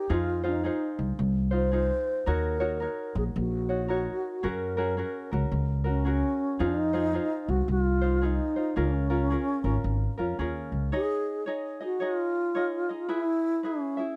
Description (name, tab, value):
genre	Hawaiian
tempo	111 BPM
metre	4/4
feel	swing 63% on 8ths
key	Db major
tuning	A4 = 440 Hz
part	mellow wooden-headed alto flute	melody	0.0-14.2 s	Db4 to C5	-31 LUFS	equal	none
part	tenor ukulele	accompaniment	0.0-14.2 s	Db4 to E5	-35 LUFS	equal	none
part	upright bass	bass	0.1-10.9 s	Ab1 to Gb2	-30 LUFS	equal	none
room	light reverb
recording	dry, close 1970s-style studio recording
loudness	-28 LUFS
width	mono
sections	0.0-10.9 A section; 10.9-14.2 B section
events	none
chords	0.1 Fm7; 2.3 Ebm7; 4.4 Gbadd9; 6.6 Fm7; 8.8 Db6; 10.9 Dbsus2; 13.1 E